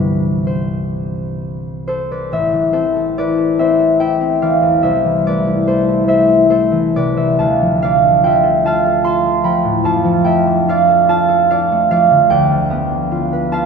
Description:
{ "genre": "classical, solo harp piece", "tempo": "72 BPM", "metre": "3/4", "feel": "uneven beats, rubato", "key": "A minor", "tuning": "A4 = 435 Hz", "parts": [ { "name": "concert harp", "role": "solo", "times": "0.0-13.7 s", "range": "A1 to C6", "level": "-12 LUFS", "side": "equal", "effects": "none" } ], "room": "wet church reverb, RT60 4.0 s", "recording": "minimal, uncompressed stereo recording", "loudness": "-12 LUFS", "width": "side -5 dB against mid", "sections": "0.0-2.3 A section; 2.3-13.7 B section", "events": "none", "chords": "0.0 C; 2.3 Am; 4.8 Am/C; 7.4 Dm; 9.8 Dm/F; 12.3 G7/D" }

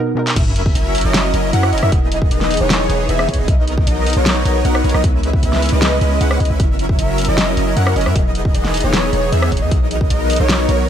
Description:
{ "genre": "future bass", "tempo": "154 BPM", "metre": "4/4", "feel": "half-time", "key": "E lydian", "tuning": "A4 = 440 Hz", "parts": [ { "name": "pop drum kit", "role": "drums", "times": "0.2-10.8 s", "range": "crash cymbal, hi-hat, rim click, snare drum, toms", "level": "-20 LUFS", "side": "equal", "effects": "high-pass filter on snare, high-pass filter on hats, high-pass filter on toms, high-pass filter on cymbals" }, { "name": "ethereal airy pad", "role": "sustained chords", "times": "0.9-10.9 s", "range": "C#3 to A#4", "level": "-26 LUFS", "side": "right 1 dB", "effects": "ensemble chorus, built-in reverb, sidechain pumping" }, { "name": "airy dreamy lead", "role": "arpeggios", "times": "0.4-10.9 s", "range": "C#5 to F#5", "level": "-23 LUFS", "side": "equal", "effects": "chorus, sidechain pumping, dub echo" }, { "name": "supersaw chords", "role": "riff", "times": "0.4-10.9 s", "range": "E3 to F#5", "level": "-20 LUFS", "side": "equal", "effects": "lush chorus, sidechain pumping, dub echo" }, { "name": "warm 808-style bass", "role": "bass", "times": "0.4-10.9 s", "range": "E1 to F#2", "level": "-18 LUFS", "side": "equal", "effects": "sidechain pumping" }, { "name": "electronic kick drum", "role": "drums", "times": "0.4-10.1 s", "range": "none", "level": "-17 LUFS", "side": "equal", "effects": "none" }, { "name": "sub drop", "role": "sound effects", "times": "0.4-1.9 s", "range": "none", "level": "-26 LUFS", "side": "equal", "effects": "none" } ], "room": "digital ambience", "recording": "none", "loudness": "-13 LUFS", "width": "side -9 dB against mid", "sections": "0.4-10.9 A section", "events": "break 0.0-0.4; drum fill 0.2; drop 0.4-10.9; impact 0.4-1.9", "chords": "0.4 F#7; 1.9 Emaj7; 3.5 Bmaj7; 5.0 C#m7; 6.6 F#7; 8.2 Emaj7; 9.7 Bmaj7" }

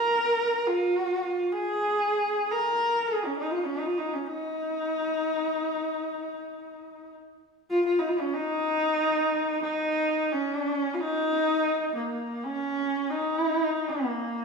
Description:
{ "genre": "mongolian traditional, Mongolian folk", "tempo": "free time", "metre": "none", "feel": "none", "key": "unclear", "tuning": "A4 = 442 Hz", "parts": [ { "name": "bright horsehead fiddle", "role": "solo", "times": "0.0-14.4 s", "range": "Bb3 to Bb4", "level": "-25 LUFS", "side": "equal", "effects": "none" } ], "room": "wet recital hall reverb, RT60 1.7 s", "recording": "recorded in a church or concert hall", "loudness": "-25 LUFS", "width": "side -4 dB against mid", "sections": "0.0-14.4 A section", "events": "slowing down 11.1-14.4", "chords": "none" }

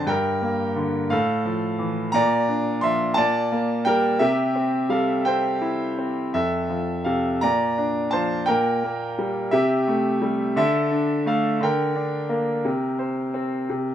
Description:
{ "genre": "classical, lyrical solo piano", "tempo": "58 BPM (dotted quarters)", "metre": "6/8", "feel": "rubato", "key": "unclear", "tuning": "A4 = 440 Hz", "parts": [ { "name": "bright concert grand piano", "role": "solo", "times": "0.0-13.9 s", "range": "F2 to C6", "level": "-20 LUFS", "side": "equal", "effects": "none" } ], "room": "light reverb", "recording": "none", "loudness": "-20 LUFS", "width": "side -10 dB against mid", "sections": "0.0-13.9 A section", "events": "grand piano fill 13.7", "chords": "0.1 Gm; 1.1 Fmaj7/A; 2.1 Bb; 3.2 Gmadd9/Bb; 4.2 C; 6.4 F; 7.4 Bb; 8.5 Gm/Bb; 9.5 C6; 10.6 D5; 11.6 Gm/D; 12.6 Gmadd11/C" }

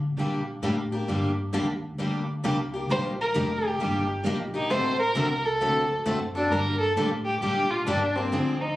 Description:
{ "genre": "acoustic string swing (jazz manouche)", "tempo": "132 BPM", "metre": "4/4", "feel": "swing 64% on 8ths", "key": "G minor", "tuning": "A4 = 440 Hz", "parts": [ { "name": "upright bass", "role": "bass", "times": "0.0-8.8 s", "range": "F1 to D3", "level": "-31 LUFS", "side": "left 1 dB", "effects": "none" }, { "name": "picked steel-string acoustic guitar", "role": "accompaniment", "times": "0.2-8.5 s", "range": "D3 to A4", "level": "-30 LUFS", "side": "right 2 dB", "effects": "none" }, { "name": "picked swing-style acoustic guitar", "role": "accompaniment", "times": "0.2-8.5 s", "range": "D3 to A4", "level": "-31 LUFS", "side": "left 4 dB", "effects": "none" }, { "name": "dark violin", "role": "melody", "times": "2.9-8.8 s", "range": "C4 to C5", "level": "-25 LUFS", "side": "equal", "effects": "none" } ], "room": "moderate studio ambience, RT60 0.5 s", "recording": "recorded on a phone in the room, club reverb", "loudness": "-24 LUFS", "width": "side -16 dB against mid", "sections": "0.0-8.8 A section", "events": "none", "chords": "0.0 Gm; 2.9 Ebmaj7; 4.7 D7; 6.5 Gm" }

